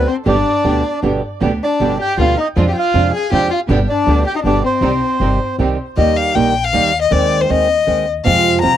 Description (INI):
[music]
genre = tango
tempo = 158 BPM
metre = 3/4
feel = rubato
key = C harmonic minor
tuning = A4 = 438 Hz
[part]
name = bandoneon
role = melody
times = 0.0-5.6 s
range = C5 to Ab5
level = -20 LUFS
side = right 4 dB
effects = tape echo
[part]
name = warm violin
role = second line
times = 0.0-8.8 s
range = C4 to Bb5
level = -17 LUFS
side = left 7 dB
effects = none
[part]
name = flamenco guitar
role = accompaniment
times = 0.0-8.8 s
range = B2 to G4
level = -18 LUFS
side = right 6 dB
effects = none
[part]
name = rich chamber string section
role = stabs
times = 0.0-5.8 s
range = B3 to G4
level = -23 LUFS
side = right 2 dB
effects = none
[part]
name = upright bass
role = bass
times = 0.0-8.8 s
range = G1 to F2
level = -19 LUFS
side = equal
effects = none
[sound]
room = little or no reverb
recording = dry, close 1970s-style studio recording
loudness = -13 LUFS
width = side -10 dB against mid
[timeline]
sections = 0.0-6.0 A section; 6.0-8.8 B section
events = violin solo 6.0-8.8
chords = 0.3 G; 2.6 Dm7b5/F; 3.7 G; 4.8 Cm; 6.0 Eb; 7.1 Ab/Eb; 8.3 Fm